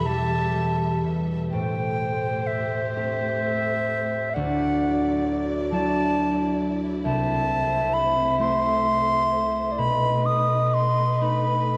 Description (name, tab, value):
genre	celtic folk, Celtic slow air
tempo	44 BPM (dotted quarters)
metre	6/8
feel	uneven beats, rubato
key	unclear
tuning	A4 = 439 Hz
part	bright wooden flute	melody	0.0-11.8 s	E5 to D#6	-28 LUFS	equal	none
part	mellow baroque flute	second line	0.0-11.8 s	G4 to E5	-31 LUFS	equal	none
part	concert harp	accompaniment	0.0-11.8 s	C2 to G4	-28 LUFS	equal	none
part	clear studio string section	sustained chords	0.0-11.8 s	C3 to E5	-36 LUFS	equal	none
room	wet church reverb, RT60 3.3 s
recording	dark, warm production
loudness	-24 LUFS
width	mono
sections	0.0-1.5 A section; 1.5-11.8 B section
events	none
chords	0.0 Em; 1.5 Am7; 4.4 Dadd9; 7.0 Am/C; 9.8 B7